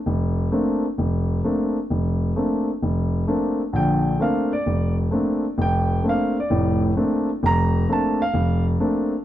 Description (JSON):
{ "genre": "jazz", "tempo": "130 BPM", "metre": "4/4", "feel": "swing 65% on 8ths", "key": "Bb major", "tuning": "A4 = 439 Hz", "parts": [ { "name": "dark concert grand piano", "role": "solo", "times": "0.1-9.1 s", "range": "F1 to Bb5", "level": "-19 LUFS", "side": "equal", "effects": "none" } ], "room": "light reverb, small room ambience", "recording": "dry, close 1970s-style studio recording", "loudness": "-19 LUFS", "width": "side -12 dB against mid", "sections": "0.0-3.7 A section; 3.7-9.2 B section", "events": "none", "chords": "0.0 Bbmaj9" }